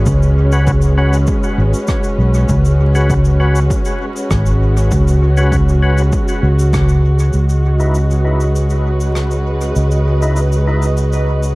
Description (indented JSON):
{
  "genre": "ambient dub",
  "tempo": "99 BPM",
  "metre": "4/4",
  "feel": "straight",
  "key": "unclear",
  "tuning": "A4 = 440 Hz",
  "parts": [
    { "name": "dark studio string section", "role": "sustained chords", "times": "0.0-11.6 s", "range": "G#3 to B4", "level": "-20 LUFS", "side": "equal", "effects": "low-pass filter" },
    { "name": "fingered electric bass", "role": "bass", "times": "0.0-11.6 s", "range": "G#1 to C#2", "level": "-12 LUFS", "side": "equal", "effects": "tube saturation" },
    { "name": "cabasa and rim click", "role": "drums", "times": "0.1-11.6 s", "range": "none", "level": "-30 LUFS", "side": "equal", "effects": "dub echo" },
    { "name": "electronic kick drum", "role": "drums", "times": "0.1-6.9 s", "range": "none", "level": "-19 LUFS", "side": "equal", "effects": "overdrive" },
    { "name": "overdriven tonewheel organ", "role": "stabs", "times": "0.5-10.9 s", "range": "C#4 to B4", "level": "-24 LUFS", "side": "left 2 dB", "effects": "chorus vibrato, low-pass filter, dub echo" },
    { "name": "bubbling stepped-filter texture", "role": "texture", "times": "7.3-11.6 s", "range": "D#5", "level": "-28 LUFS", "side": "right 2 dB", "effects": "chorus, built-in reverb" },
    { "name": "soft synth bell", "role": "arpeggios", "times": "11.1-11.6 s", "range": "B4", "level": "-25 LUFS", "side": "right 1 dB", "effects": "chorus, phaser, low-pass filter" }
  ],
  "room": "studio reverb",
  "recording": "dark, warm production, vinyl crackle",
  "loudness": "-11 LUFS",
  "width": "side -22 dB against mid",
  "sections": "0.0-7.3 A section; 7.3-11.6 B section",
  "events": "band accent 6.7-7.0",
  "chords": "0.0 Bsus2; 7.3 C#m9"
}